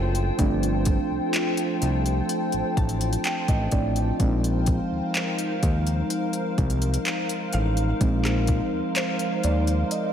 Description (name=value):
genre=contemporary R&B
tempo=63 BPM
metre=4/4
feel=straight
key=unclear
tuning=A4 = 439 Hz
part: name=muted felt-like synth keys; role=accompaniment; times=0.0-10.1 s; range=F3 to A5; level=-27 LUFS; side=right 2 dB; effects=chorus
part: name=glassy FM pad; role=sustained chords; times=0.0-10.1 s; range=Eb4 to G5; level=-29 LUFS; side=left 2 dB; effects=ensemble chorus, built-in reverb, sidechain pumping
part: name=fat analog bass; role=bass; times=0.0-9.8 s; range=F#1 to Eb2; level=-24 LUFS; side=equal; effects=none
part: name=mallet-like synth pluck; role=texture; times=0.0-10.1 s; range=C5 to A5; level=-38 LUFS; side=equal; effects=none
part: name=smooth R&B drum kit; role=drums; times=0.1-10.1 s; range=handclaps, hi-hat, kick drum, rim click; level=-27 LUFS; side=equal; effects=overdrive
room=moderate lush hall reverb, RT60 2.5 s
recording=dreamy mix soaked in reverb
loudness=-22 LUFS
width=side -9 dB against mid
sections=0.0-10.1 A section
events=synth keys fill 2.3-4.2, 9.0-10.1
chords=0.0 G9sus4; 4.2 Bb9sus4